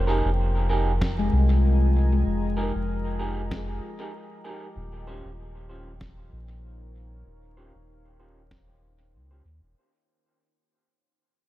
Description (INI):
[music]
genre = ambient dub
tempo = 96 BPM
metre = 4/4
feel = swing 56% on 16ths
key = unclear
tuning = A4 = 440 Hz
[part]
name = deep dark ambient pad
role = sustained chords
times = 0.0-9.8 s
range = Eb4 to Bb5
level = -36 LUFS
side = equal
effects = chorus, built-in reverb
[part]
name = soft dub sub bass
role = bass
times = 0.0-9.7 s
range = Eb1 to Eb2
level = -24 LUFS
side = equal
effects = tube saturation
[part]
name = electric guitar through a small old amp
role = stabs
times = 0.1-9.4 s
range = Db4 to C5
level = -33 LUFS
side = right 4 dB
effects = low-pass filter, dub echo
[part]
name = electronic kick drum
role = drums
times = 1.0-8.7 s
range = none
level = -34 LUFS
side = equal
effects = overdrive
[part]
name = electronic snare drum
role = drums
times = 1.0-8.7 s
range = none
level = -35 LUFS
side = equal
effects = dub echo
[part]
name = handpan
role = arpeggios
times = 1.2-7.5 s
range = Ab3 to Bb4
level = -31 LUFS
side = left 6 dB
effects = low-pass filter, dub echo
[sound]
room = light reverb, digital ambience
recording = vinyl crackle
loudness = -21 LUFS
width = side -16 dB against mid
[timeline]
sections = 0.0-9.8 A section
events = fade-out 0.0-9.8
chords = 0.0 Fm11; 4.8 Eb13